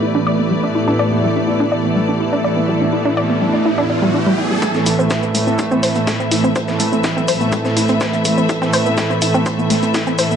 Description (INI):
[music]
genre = melodic techno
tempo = 124 BPM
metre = 4/4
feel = straight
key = A minor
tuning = A4 = 440 Hz
[part]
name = muted studio string section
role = sustained chords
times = 0.0-10.4 s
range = A2 to E5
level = -22 LUFS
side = left 2 dB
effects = sidechain pumping, low-pass filter
[part]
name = analog pluck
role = arpeggios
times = 0.0-10.4 s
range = G3 to D5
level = -20 LUFS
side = equal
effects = chorus, sidechain pumping, dub echo
[part]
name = brassy analog pad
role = stabs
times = 0.0-10.4 s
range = A2 to E4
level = -19 LUFS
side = right 2 dB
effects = chorus, tremolo, sidechain pumping, dub echo
[part]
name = ethereal airy pad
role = texture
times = 0.0-10.4 s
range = A3 to B5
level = -24 LUFS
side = equal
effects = ensemble chorus, built-in reverb, sidechain pumping
[part]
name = riser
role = sound effects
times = 2.3-4.6 s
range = none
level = -26 LUFS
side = right 1 dB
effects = none
[part]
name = breakbeat sampler-style drum kit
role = drums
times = 4.6-10.3 s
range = hi-hat, snare drum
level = -27 LUFS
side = left 1 dB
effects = sidechain pumping on hats, high-pass filter on hats, high-pass filter on snare, high-pass filter on room
[part]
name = electronic kick drum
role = drums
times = 4.6-10.0 s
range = none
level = -24 LUFS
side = left 1 dB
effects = overdrive, high-pass filter on kick
[part]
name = cabasa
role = percussion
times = 4.6-10.4 s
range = none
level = -32 LUFS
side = left 3 dB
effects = none
[part]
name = dark detuned saw bass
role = bass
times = 4.7-10.4 s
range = A1 to A2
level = -30 LUFS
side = equal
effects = none
[part]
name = electronic hi-hat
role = drums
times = 4.9-10.3 s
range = none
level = -23 LUFS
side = equal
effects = none
[sound]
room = light reverb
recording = dark, warm production, nothing above 10.9 kHz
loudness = -14 LUFS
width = side -8 dB against mid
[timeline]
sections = 0.0-4.6 A section; 4.6-10.4 B section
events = riser 2.3-4.6; build-up 4.6-10.4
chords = 0.0 Em7/A; 4.6 Amadd9